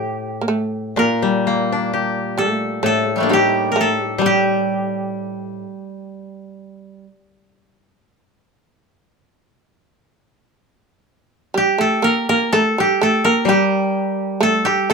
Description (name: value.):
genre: japanese traditional, Japanese chamber music.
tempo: 58-66 BPM.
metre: 4/4.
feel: rubato.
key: G hirajoshi.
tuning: A4 = 438 Hz.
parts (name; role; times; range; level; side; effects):
koto; melody; 0.0-14.9 s; G3 to Bb4; -18 LUFS; equal; none.
shamisen; second line; 0.0-14.9 s; G3 to Bb3; -21 LUFS; right 4 dB; none.
koto; accompaniment; 0.0-7.0, 13.4-14.9 s; A2 to G4; -21 LUFS; left 2 dB; none.
room: moderate small room reverb, RT60 0.5 s.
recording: minimal, uncompressed stereo recording.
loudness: -16 LUFS.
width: side -4 dB against mid.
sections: 0.0-10.5 A section; 10.5-14.9 B section.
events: none.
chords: none.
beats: 0.02 0.98 1.92 | 2.84 3.76 4.68 5.62 | 6.57 7.54 8.52 9.53 | 10.55 11.54 12.52 13.48 | 14.43.